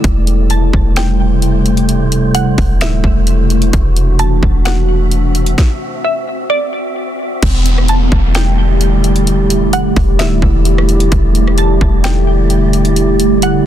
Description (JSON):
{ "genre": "hip hop, atmospheric cloud-rap", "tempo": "130 BPM", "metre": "4/4", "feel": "half-time", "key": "E minor", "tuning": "A4 = 440 Hz", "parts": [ { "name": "dark analog pad", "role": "sustained chords", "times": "0.0-13.7 s", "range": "C3 to A4", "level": "-15 LUFS", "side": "right 1 dB", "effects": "chorus, phaser, sidechain pumping" }, { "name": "soft 808-style bass", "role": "bass", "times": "0.0-13.6 s", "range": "D1 to E1", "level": "-13 LUFS", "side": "equal", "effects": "none" }, { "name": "trap drum kit", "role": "drums", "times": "0.0-13.5 s", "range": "crash cymbal, hi-hat, kick drum, rim click, snare drum", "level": "-16 LUFS", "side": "equal", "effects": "overdrive" }, { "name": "wind-like tuned noise texture", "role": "texture", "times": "0.0-13.7 s", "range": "A3 to E5", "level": "-24 LUFS", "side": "left 2 dB", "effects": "built-in reverb" }, { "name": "glassy wavetable pluck", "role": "melody", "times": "0.5-13.7 s", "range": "D5 to A5", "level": "-22 LUFS", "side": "right 1 dB", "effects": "chorus, low-pass filter, tape echo" }, { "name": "downlifter", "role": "sound effects", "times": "7.4-11.1 s", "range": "none", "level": "-22 LUFS", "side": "equal", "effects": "none" } ], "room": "little or no reverb", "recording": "dense, heavily limited modern master", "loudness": "-10 LUFS", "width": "side -11 dB against mid", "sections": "0.0-7.4 A section; 7.4-13.7 B section", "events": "stop 5.6-7.4", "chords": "0.0 Am7/E; 3.7 D9/E; 7.4 Em11", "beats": "| 0.04 0.50 0.96 1.43 | 1.89 2.35 2.81 3.27 | 3.73 4.20 4.66 5.12 | 5.58 6.04 6.50 6.96 | 7.43 7.89 8.35 8.81 | 9.27 9.73 10.20 10.66 | 11.12 11.58 12.04 12.50 | 12.96 13.43" }